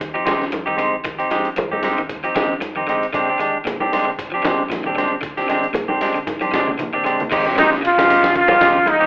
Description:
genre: afrobeat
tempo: 115 BPM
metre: 4/4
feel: swing 55% on 16ths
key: F dorian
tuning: A4 = 440 Hz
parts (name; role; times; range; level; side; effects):
- electric guitar at the edge of break-up; arpeggios; 0.0-9.1 s; C3 to F3; -30 LUFS; left 1 dB; none
- deep dub fingered electric bass; bass; 0.0-9.1 s; F1 to Bb2; -38 LUFS; equal; none
- dusty soul sampler-style drum kit; drums; 0.0-9.0 s; crash cymbal, hi-hat, kick drum, ride cymbal, snare drum; -24 LUFS; equal; none
- congas; percussion; 0.0-9.0 s; none; -25 LUFS; equal; none
- semi-hollow electric guitar; stabs; 0.1-9.1 s; Ab3 to G4; -19 LUFS; right 1 dB; none
- bright trombone; melody; 7.6-9.1 s; Eb4 to F4; -14 LUFS; equal; none
- growling trumpet; second line; 7.6-9.1 s; Eb4 to F4; -17 LUFS; equal; none
room: moderate large studio reverb, RT60 0.9 s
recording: band playing live in one room, telephone sound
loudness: -16 LUFS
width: side -25 dB against mid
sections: 0.0-7.3 A section; 7.3-9.1 B section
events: drum fill 6.3-7.3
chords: 0.0 Fm9; 3.1 Bb13; 7.3 Fm9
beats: 0.01 0.53 | 1.06 1.58 2.10 2.62 | 3.14 3.66 4.18 4.71 | 5.23 5.75 6.27 6.79 | 7.31 7.83 8.35 8.87

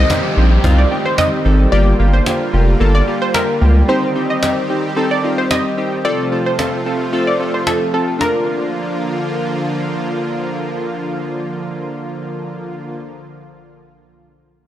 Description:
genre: dance-pop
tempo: 111 BPM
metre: 4/4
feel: straight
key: Bb major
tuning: A4 = 439 Hz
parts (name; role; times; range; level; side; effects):
- analog pluck; melody; 0.0-9.8 s; A4 to Eb5; -20 LUFS; equal; chorus, tape echo
- chorused retro synth keys; accompaniment; 0.0-13.0 s; Bb3 to Bb4; -20 LUFS; left 1 dB; none
- supersaw pad; sustained chords; 0.0-12.9 s; C3 to G4; -22 LUFS; right 1 dB; none
- saturated sub bass; bass; 0.0-3.8 s; F1 to Db2; -12 LUFS; equal; none
- downlifter; sound effects; 0.0-3.9 s; none; -27 LUFS; right 1 dB; none
- cajon; drums; 0.1-8.3 s; none; -22 LUFS; equal; none
room: light reverb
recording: dark, warm production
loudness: -14 LUFS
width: side -12 dB against mid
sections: 0.0-8.2 A section; 8.2-12.5 B section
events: none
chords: 0.0 Cm; 1.7 Gm7; 3.9 Cm; 6.0 F; 8.2 Bb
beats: 0.10 0.64 1.18 | 1.72 2.26 2.80 3.35 | 3.88 4.43 4.97 5.51 | 6.05 6.59 7.13 7.67 | 8.21 8.75 9.29 9.83 | 10.37 10.91 11.45 11.99

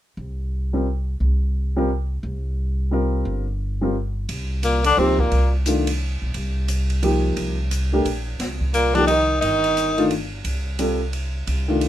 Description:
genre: modal jazz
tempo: 175 BPM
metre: 3/4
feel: swing 62% on 8ths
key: C dorian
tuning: A4 = 444 Hz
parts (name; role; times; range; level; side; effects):
- upright bass; bass; 0.2-11.9 s; G1 to Db2; -23 LUFS; equal; none
- warm baby grand piano; accompaniment; 0.7-11.9 s; Eb3 to Bb4; -22 LUFS; left 1 dB; none
- open jazz drum kit; drums; 4.3-11.9 s; hi-hat, kick drum, ride cymbal, snare drum; -30 LUFS; right 1 dB; none
- bright tenor saxophone; melody; 4.6-5.5, 8.7-10.1 s; Bb3 to Eb4; -19 LUFS; left 2 dB; none
- brilliant trombone; second line; 4.6-5.5, 8.7-10.1 s; Bb2 to Eb3; -25 LUFS; right 4 dB; none
room: light reverb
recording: minimal, uncompressed stereo recording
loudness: -19 LUFS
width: side -12 dB against mid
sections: 0.2-4.3 A section; 4.3-11.9 B section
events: none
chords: 0.2 C7sus4; 4.3 Cm11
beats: | 0.18 0.52 0.86 | 1.21 1.55 1.89 | 2.23 2.58 2.92 | 3.26 3.60 3.95 | 4.29 4.63 4.97 | 5.32 5.66 6.00 | 6.34 6.69 7.03 | 7.37 7.71 8.05 | 8.40 8.74 9.08 | 9.42 9.77 10.11 | 10.45 10.79 11.13 | 11.48 11.82

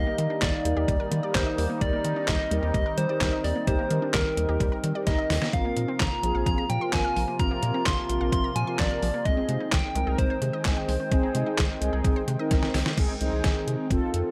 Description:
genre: synth-pop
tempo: 129 BPM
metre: 4/4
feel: straight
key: unclear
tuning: A4 = 443 Hz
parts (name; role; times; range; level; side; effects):
- soft struck synth lead; melody; 0.0-12.5 s; Bb4 to C6; -32 LUFS; equal; chorus, slapback echo, shimmer reverb
- mellow synth brass; accompaniment; 0.0-14.3 s; C4 to Bb4; -34 LUFS; equal; chorus, shimmer reverb
- sweeping resonant pad; sustained chords; 0.0-14.3 s; C3 to G5; -36 LUFS; equal; chorus, phaser, shimmer reverb
- unison pluck; arpeggios; 0.0-12.9 s; F3 to F6; -38 LUFS; equal; slapback echo, shimmer reverb
- round analog bass; bass; 0.0-14.2 s; F1 to Eb3; -31 LUFS; equal; none
- detuned 8-bit digital drum machine; drums; 0.2-14.2 s; crash cymbal, handclaps, hi-hat, kick drum, snare drum; -29 LUFS; equal; none
room: light reverb, digital ambience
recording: none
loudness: -26 LUFS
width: mono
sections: 0.0-13.0 A section; 13.0-14.3 B section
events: drum fill 5.1-5.5, 12.5-13.0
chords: 0.0 Ebmaj7; 5.5 Bbsus2; 9.3 Abmaj7/C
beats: 0.42 0.88 1.35 | 1.81 2.28 2.74 3.21 | 3.67 4.14 4.60 5.07 | 5.53 6.00 6.46 6.93 | 7.39 7.86 8.32 8.79 | 9.26 9.72 10.19 10.65 | 11.12 11.58 12.05 12.51 | 12.98 13.44 13.91

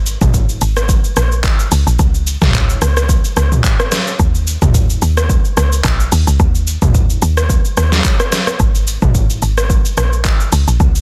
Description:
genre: amapiano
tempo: 109 BPM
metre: 4/4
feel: swing 55% on 16ths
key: unclear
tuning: A4 = 440 Hz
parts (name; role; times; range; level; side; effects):
- woody log drum bass; bass; 0.0-11.0 s; Ab1 to Eb2; -17 LUFS; equal; none
- deep house drum kit; drums; 0.1-11.0 s; handclaps, hi-hat, kick drum, rim click, shaker, snare drum, toms; -16 LUFS; equal; soft clipping on snare
room: little or no reverb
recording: dense, heavily limited modern master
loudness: -14 LUFS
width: mono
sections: 0.0-11.0 A section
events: none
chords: none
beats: 0.34 0.89 1.44 | 1.99 2.54 3.09 3.64 | 4.19 4.74 5.29 5.84 | 6.39 6.95 7.50 8.05 | 8.60 9.15 9.70 10.25 | 10.80

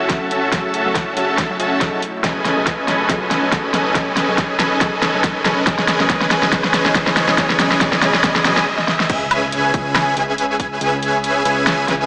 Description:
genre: future bass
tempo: 140 BPM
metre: 4/4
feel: swing 55% on 16ths, half-time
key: unclear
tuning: A4 = 442 Hz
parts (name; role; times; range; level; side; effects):
- shimmering ambient pad; sustained chords; 0.0-8.6 s; B2 to G#5; -33 LUFS; equal; none
- dense compressed supersaw; riff; 0.0-12.1 s; C#4 to A5; -21 LUFS; equal; sidechain pumping, low-pass filter, tape echo
- riser and impact; sound effects; 0.8-10.8 s; none; -29 LUFS; equal; none
- soft round pluck; accompaniment; 0.1-8.5 s; B2 to E5; -28 LUFS; equal; analog chorus, sidechain pumping, tape echo
- electronic kick drum; drums; 0.1-10.7 s; none; -25 LUFS; equal; none
- pop drum kit; drums; 0.1-12.0 s; crash cymbal, hi-hat, snare drum, woodblock; -21 LUFS; equal; overdrive
- airy dreamy lead; arpeggios; 9.1-12.1 s; G#5; -26 LUFS; equal; chorus, sidechain pumping
- fat analog bass; bass; 9.1-12.1 s; C#2; -30 LUFS; equal; sidechain pumping
room: wet lush hall reverb, RT60 2.0 s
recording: small speaker sound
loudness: -17 LUFS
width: mono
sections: 0.0-9.1 A section; 9.1-12.1 B section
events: build-up 0.0-9.1; drum fill 0.0-8.7, 8.8-9.1; stop 8.7-9.1; drop 9.1-12.1; impact 9.1-10.8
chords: 0.0 F#m7; 2.0 B13; 5.7 Emaj7/B; 9.1 C#m7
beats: 0.10 | 0.53 0.95 1.38 1.81 | 2.24 2.67 3.10 3.52 | 3.95 4.38 4.81 5.24 | 5.67 6.10 6.53 6.95 | 7.38 7.81 8.24 8.67 | 9.10 9.53 9.95 10.38 | 10.81 11.24 11.67

